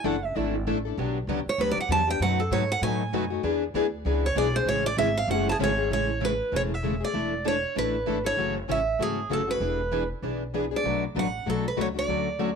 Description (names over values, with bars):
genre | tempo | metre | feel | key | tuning
acoustic string swing (jazz manouche) | 194 BPM | 4/4 | swing 58% on 8ths | A major | A4 = 439 Hz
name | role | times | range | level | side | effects
picked steel-string acoustic guitar | melody | 0.0-12.5 s | G#4 to A5 | -27 LUFS | right 4 dB | none
picked plugged-in steel-string acoustic guitar | accompaniment | 0.0-12.5 s | B2 to A4 | -29 LUFS | left 14 dB | none
picked steel-string acoustic guitar | accompaniment | 0.0-12.5 s | B2 to B4 | -33 LUFS | right 14 dB | none
upright bass | bass | 0.0-12.6 s | E1 to A2 | -31 LUFS | equal | none
room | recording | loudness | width
light reverb, small room ambience | 1960s-style stereo with parts hard left and right | -24 LUFS | side -6 dB against mid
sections
0.0-5.9 A section; 5.9-12.6 B section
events
steel-string acoustic guitar solo 0.0-5.9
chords
0.0 E7sus4; 1.0 Gmaj7; 2.2 B7; 3.4 E7; 4.7 Amaj7; 5.9 Amaj9; 7.1 E7sus4; 8.4 F#m7; 9.6 E7; 10.8 Bm7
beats
0.05 0.36 0.67 | 0.98 1.28 1.59 1.90 | 2.21 2.52 2.83 3.13 | 3.44 3.75 4.06 4.37 | 4.67 4.98 5.29 5.60 | 5.91 6.21 6.52 6.83 | 7.14 7.45 7.76 8.07 | 8.38 8.69 8.99 9.30 | 9.61 9.92 10.23 10.54 | 10.85 11.15 11.46 11.77 | 12.08 12.39